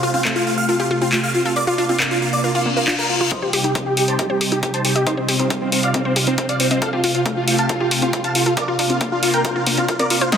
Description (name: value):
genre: uplifting trance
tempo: 137 BPM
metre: 4/4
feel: straight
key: C dorian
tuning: A4 = 441 Hz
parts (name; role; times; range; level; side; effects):
- big supersaw lead; melody; 0.0-10.4 s; C4 to A5; -20 LUFS; equal; phaser, sidechain pumping, low-pass filter, dub echo
- analog string pad; sustained chords; 0.0-10.4 s; C3 to G4; -23 LUFS; right 1 dB; ensemble chorus, sidechain pumping
- wide unison pluck; arpeggios; 0.0-10.4 s; A3 to Eb5; -26 LUFS; left 2 dB; sidechain pumping, dub echo
- punchy analog drum machine; drums; 0.2-10.4 s; handclaps, hi-hat, snare drum; -22 LUFS; left 1 dB; sidechain pumping on hats
- reverse cymbal and riser; sound effects; 2.6-3.3, 10.3-10.4 s; none; -24 LUFS; left 5 dB; none
- electronic kick drum; drums; 3.3-10.4 s; none; -26 LUFS; equal; high-pass filter on kick, high-pass filter on room
room: moderate lush hall reverb, RT60 1.9 s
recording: dense, heavily limited modern master, high-pass filter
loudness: -16 LUFS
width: side -8 dB against mid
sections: 0.0-3.3 A section; 3.3-10.4 B section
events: reverse cymbal 2.6-3.3; build-up 3.3-10.4; filter sweep on supersaw synth 3.3-10.4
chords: 0.0 Fadd9; 1.6 Bbadd9; 3.3 Cm; 6.8 Fadd9; 8.6 Bbadd9